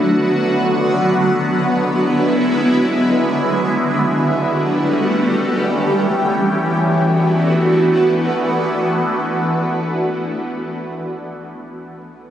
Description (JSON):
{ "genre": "dream pop", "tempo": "free time", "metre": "none", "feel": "none", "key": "D major", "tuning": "A4 = 440 Hz", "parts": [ { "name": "shimmering ambient pad", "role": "sustained chords", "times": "0.0-10.0 s", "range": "D3 to G4", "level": "-15 LUFS", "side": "equal", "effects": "chorus, built-in reverb, phaser" } ], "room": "moderate huge ambient reverb, RT60 4.7 s", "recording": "recorded on a phone in the room, studio reverb, compression", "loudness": "-14 LUFS", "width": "side -10 dB against mid", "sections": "0.0-6.3 A section; 6.3-9.2 B section", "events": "slowing down 1.1-6.3", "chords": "0.0 Bm7; 1.1 E9; 3.6 Gmaj9; 4.9 A7; 6.3 D69" }